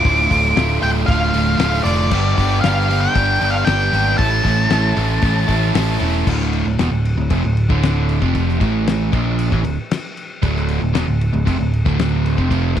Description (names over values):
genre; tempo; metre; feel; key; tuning
classic rock; 116 BPM; 4/4; straight; D minor from 6.3 s; A4 = 437 Hz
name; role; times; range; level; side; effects
octave-fuzz lead guitar; melody; 0.0-5.7 s; D5 to D6; -19 LUFS; equal; distortion, tape echo
overdriven semi-hollow guitar; riff; 0.0-12.8 s; D2 to A4; -20 LUFS; right 1 dB; none
damped 70s drum kit; drums; 0.0-12.8 s; crash cymbal, hi-hat, kick drum, snare drum; -23 LUFS; left 3 dB; none
modern bright picked electric bass; bass; 0.1-12.8 s; D1 to Bb1; -19 LUFS; equal; none
room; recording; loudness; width
small room ambience; 1960s-style stereo; -15 LUFS; side -10 dB against mid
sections
0.0-6.3 A section; 6.3-12.8 B section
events
none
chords
0.0 Dm; 2.1 G; 4.2 A; 6.3 Dm; 8.6 A5; 9.1 Dm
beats
| 0.04 0.56 1.08 1.60 | 2.12 2.63 3.15 3.67 | 4.19 4.71 5.23 5.75 | 6.27 6.79 7.31 7.83 | 8.35 8.87 9.39 9.91 | 10.43 10.95 11.46 11.98 | 12.51